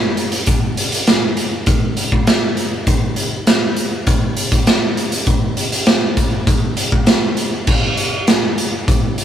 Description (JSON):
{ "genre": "rock", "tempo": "100 BPM", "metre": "4/4", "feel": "straight", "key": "none", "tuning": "none", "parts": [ { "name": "raw garage drum kit", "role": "drums", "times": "0.2-9.2 s", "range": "crash cymbal, hi-hat, kick drum, snare drum", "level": "-14 LUFS", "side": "equal", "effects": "none" } ], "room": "light reverb", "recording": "rough rehearsal-room recording", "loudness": "-14 LUFS", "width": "side -10 dB against mid", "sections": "0.0-9.2 A section", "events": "none", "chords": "none", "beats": "| 0.48 1.08 1.68 2.28 | 2.88 3.48 4.08 4.68 | 5.28 5.88 6.48 7.08 | 7.68 8.28 8.88" }